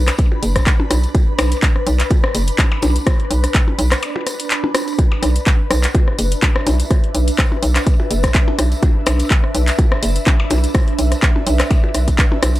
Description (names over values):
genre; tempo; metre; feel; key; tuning
minimal techno; 125 BPM; 4/4; swing 55% on 16ths; B minor; A4 = 440 Hz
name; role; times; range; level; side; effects
hollow knocking FM bass; bass; 0.0-12.6 s; F#1 to B1; -16 LUFS; equal; sidechain pumping
ethereal airy pad; texture; 0.0-12.6 s; D4 to B5; -24 LUFS; right 1 dB; ensemble chorus, built-in reverb, phaser, sidechain pumping
house drum kit; drums; 0.1-12.6 s; handclaps, hi-hat; -21 LUFS; equal; none
electronic rim click and percussion blips; percussion; 0.1-12.5 s; none; -23 LUFS; left 2 dB; tape echo
tambourine; percussion; 0.1-12.6 s; none; -33 LUFS; right 2 dB; none
electronic kick drum; drums; 0.2-12.3 s; none; -14 LUFS; equal; none
room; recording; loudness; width
little or no reverb; dry, gritty hardware recording, transformer saturation; -14 LUFS; side -16 dB against mid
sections
0.0-12.6 A section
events
break 4.0-5.0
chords
0.0 Bm